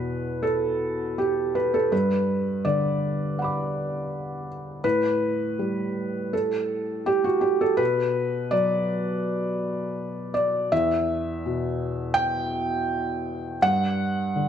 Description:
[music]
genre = neoclassical minimalist piano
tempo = 82 BPM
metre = 4/4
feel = rubato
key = E minor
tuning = A4 = 440 Hz
[part]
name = felt-muted upright piano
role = solo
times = 0.0-14.5 s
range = E2 to D6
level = -23 LUFS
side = equal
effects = none
[sound]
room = light reverb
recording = dark, warm production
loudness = -23 LUFS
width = side -9 dB against mid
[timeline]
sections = 0.0-14.5 A section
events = none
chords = 0.0 E5; 1.9 Gmaj7; 4.8 Gmaj9/A; 7.8 Bm; 10.7 Em; 13.6 G5

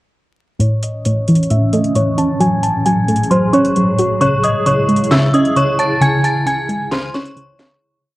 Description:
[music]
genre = hip hop, trap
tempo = 133 BPM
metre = 4/4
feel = half-time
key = C# harmonic minor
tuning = A4 = 440 Hz
[part]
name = metallic FM bell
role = melody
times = 0.6-7.8 s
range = B#4 to A6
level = -17 LUFS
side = equal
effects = chorus, low-pass filter
[part]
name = soft round pluck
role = accompaniment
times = 0.6-7.8 s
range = A2 to C#5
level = -16 LUFS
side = equal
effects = chorus, low-pass filter, cassette tape
[part]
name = granular cloud pad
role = sustained chords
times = 1.0-7.8 s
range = A2 to G#4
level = -20 LUFS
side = equal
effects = built-in reverb, low-pass filter, cassette tape
[part]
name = trap drum kit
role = drums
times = 0.6-7.7 s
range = handclaps, hi-hat, snare drum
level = -23 LUFS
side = equal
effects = overdrive, cassette tape
[sound]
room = light reverb, digital ambience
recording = home recording on cassette, vinyl crackle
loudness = -12 LUFS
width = side -17 dB against mid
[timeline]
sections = 0.6-7.8 breakdown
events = filter sweep 0.6-7.8; fade-out 6.0-7.8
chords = 0.6 A; 2.4 F#madd9; 4.2 C#m

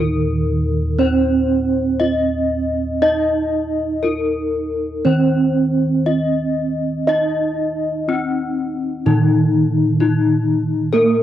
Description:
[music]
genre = Javanese gamelan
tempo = 59-66 BPM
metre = 4/4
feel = straight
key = unclear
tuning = A4 = 440 Hz
[part]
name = gamelan-type bronze metallophone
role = melody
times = 0.0-11.2 s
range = C4+20c to Eb5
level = -21 LUFS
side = left 6 dB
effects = none
[part]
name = gamelan-type bronze metallophone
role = accompaniment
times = 0.0-11.2 s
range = Eb3 to Eb4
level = -20 LUFS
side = right 5 dB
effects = cassette tape
[part]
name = gamelan-type bossed gongs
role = bass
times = 0.0-11.2 s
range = Eb2 to Eb5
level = -20 LUFS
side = equal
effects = transformer saturation
[sound]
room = moderate spring reverb, RT60 1.4 s, small room reverb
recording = home recording on cassette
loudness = -16 LUFS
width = side -11 dB against mid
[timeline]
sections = 0.0-11.2 A section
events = none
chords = none

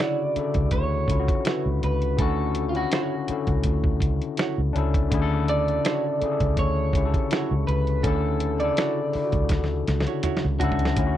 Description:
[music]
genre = R&B, neo-soul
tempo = 82 BPM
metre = 4/4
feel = swing 53% on 16ths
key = D major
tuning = A4 = 440 Hz
[part]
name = electric guitar through a small old amp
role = melody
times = 0.0-11.2 s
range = F4 to D5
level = -28 LUFS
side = right 2 dB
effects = spring reverb
[part]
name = hollow-body jazz guitar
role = second line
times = 0.0-10.5 s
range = E4 to C#5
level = -32 LUFS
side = right 12 dB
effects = tape echo
[part]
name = overdriven tine electric piano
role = accompaniment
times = 0.0-11.2 s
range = C#3 to A4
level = -27 LUFS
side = left 8 dB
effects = lush chorus
[part]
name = dusty soul sampler-style drum kit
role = drums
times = 0.0-11.1 s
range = hi-hat, kick drum, snare drum, toms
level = -26 LUFS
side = right 1 dB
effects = none
[part]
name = vintage muted fingered electric bass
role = bass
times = 0.4-11.2 s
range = C#2 to D2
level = -24 LUFS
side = right 1 dB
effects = none
[sound]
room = little or no reverb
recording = dry, close 1970s-style studio recording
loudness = -21 LUFS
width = side -12 dB against mid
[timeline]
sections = 0.0-11.0 A section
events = drum fill 9.5-11.0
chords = 0.0 Dmaj9

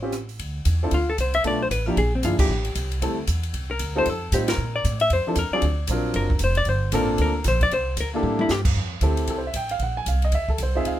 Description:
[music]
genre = jazz, small-group swing and bop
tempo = 229 BPM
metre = 4/4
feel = swing 60% on 8ths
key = F major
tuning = A4 = 439 Hz
[part]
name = hollow-body jazz guitar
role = melody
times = 0.0-8.6 s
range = C4 to E5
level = -24 LUFS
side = left 2 dB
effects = none
[part]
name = warm concert grand piano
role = accompaniment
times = 0.0-11.0 s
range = F3 to Ab5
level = -26 LUFS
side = equal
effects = none
[part]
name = upright bass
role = bass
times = 0.0-11.0 s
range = E#1 to Bb2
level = -24 LUFS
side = right 1 dB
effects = none
[part]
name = compact cocktail drum kit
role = drums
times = 0.1-10.9 s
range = crash cymbal, hi-hat, kick drum, ride cymbal, rim click, snare drum, toms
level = -29 LUFS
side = equal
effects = none
[sound]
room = light reverb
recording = minimal, uncompressed stereo recording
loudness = -20 LUFS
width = side -12 dB against mid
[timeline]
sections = 0.4-8.8 A section; 8.8-11.0 B section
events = band accent 2.4, 4.5; drum fill 8.2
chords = 0.4 D7sus2; 1.4 Bm7b5; 2.0 Bb7#11; 2.5 Am7; 3.5 Cm9; 4.1 F9; 4.6 Bbmaj9#11; 5.6 D7alt; 6.7 Gm11; 7.7 C13; 8.8 Fmaj9; 9.8 Ab13/Bb; 10.3 C69

